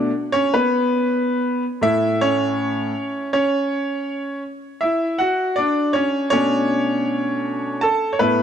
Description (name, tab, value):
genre	hip hop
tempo	80 BPM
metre	4/4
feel	swing 58% on 16ths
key	unclear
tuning	A4 = 441 Hz
part	bright grand piano	solo	0.0-8.4 s	A2 to A5	-18 LUFS	equal	none
room	moderate plate reverb, RT60 2.9 s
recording	dark, warm production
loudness	-18 LUFS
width	side -8 dB against mid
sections	0.0-8.4 A section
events	grand piano solo 0.0-8.4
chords	0.0 Bsus2; 1.8 A; 5.2 Bm9; 7.8 F#m7/A (rootless)